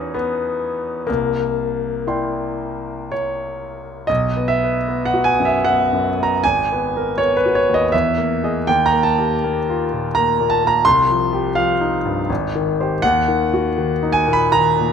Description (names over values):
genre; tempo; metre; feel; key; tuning
classical, impressionist solo piano; 53-88 BPM; 3/4; rubato; unclear; A4 = 440 Hz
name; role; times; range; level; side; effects
clear concert grand piano; solo; 0.0-14.9 s; G#1 to C6; -16 LUFS; equal; none
room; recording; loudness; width
light reverb; close, detailed microphones; -16 LUFS; side -7 dB against mid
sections
0.0-4.1 A section; 4.1-14.9 B section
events
none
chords
0.0 E69; 1.1 C9; 4.1 B5; 6.4 G#m9; 7.9 Emaj7#11; 8.7 D#add9; 10.9 Cmadd11; 12.3 G#maj7; 13.0 D#m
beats
0.17 | 1.08 2.06 3.14 | 4.09 4.87 5.64 | 6.43 7.19 7.93 | 8.67 9.43 10.16 | 10.85 11.56 12.29 | 13.03 13.76 14.52